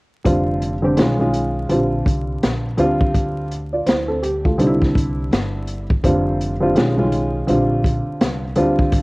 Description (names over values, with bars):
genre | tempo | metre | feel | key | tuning
hip hop, jazz-hop | 83 BPM | 4/4 | swing 61% on 16ths | unclear | A4 = 438 Hz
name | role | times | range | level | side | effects
dark upright piano | accompaniment | 0.2-9.0 s | C#3 to D5 | -18 LUFS | equal | cassette tape
upright bass | bass | 0.3-9.0 s | F1 to D2 | -24 LUFS | equal | none
open jazz drum kit | drums | 0.3-9.0 s | hi-hat, kick drum, snare drum | -20 LUFS | equal | cassette tape
room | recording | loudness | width
light reverb, small room ambience | home recording on cassette, vinyl crackle | -16 LUFS | side -24 dB against mid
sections
0.3-9.0 A section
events
none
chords
0.3 Fsus2; 1.0 B69; 1.7 Bb69; 2.8 Dm7; 4.6 Cadd9; 6.0 Fsus2; 6.8 B69; 7.5 Bb69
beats
| 0.26 0.98 1.70 2.42 | 3.15 3.87 4.59 5.32 | 6.04 6.76 7.48 8.21 | 8.93